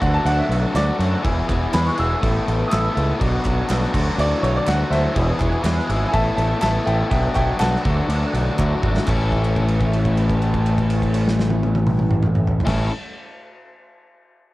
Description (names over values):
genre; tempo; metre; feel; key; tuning
indie rock; 123 BPM; 4/4; straight; A major; A4 = 440 Hz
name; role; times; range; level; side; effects
clear upright piano; melody; 0.0-9.0 s; C5 to E6; -25 LUFS; equal; tape echo
string machine, cellos; sustained chords; 0.0-12.9 s; A3 to E6; -38 LUFS; right 1 dB; none
biting overdriven guitar; riff; 0.0-12.9 s; E2 to F#4; -30 LUFS; right 4 dB; ensemble chorus, cassette tape
crunchy overdriven guitar; riff; 0.0-12.9 s; A2 to A4; -24 LUFS; left 4 dB; cassette tape
growling fingered electric bass; bass; 0.0-12.9 s; E1 to F#2; -20 LUFS; equal; overdrive
loose indie drum kit; drums; 0.0-12.8 s; crash cymbal, kick drum, snare drum, toms; -25 LUFS; equal; cassette tape
group handclap; percussion; 0.8-9.3 s; none; -37 LUFS; right 3 dB; none
room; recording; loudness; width
little or no reverb; home recording on cassette; -17 LUFS; side -18 dB against mid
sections
0.0-9.1 A section; 9.1-13.0 B section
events
upright piano solo 0.0-9.1; drum fill 8.6-9.1; held note 9.1-12.7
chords
0.0 Dadd9; 1.2 Eadd9; 2.2 Asus2; 3.2 Bm7; 3.9 Dadd9; 5.2 Eadd9; 6.1 Asus2; 7.1 Bm7; 7.8 Dadd9; 9.1 A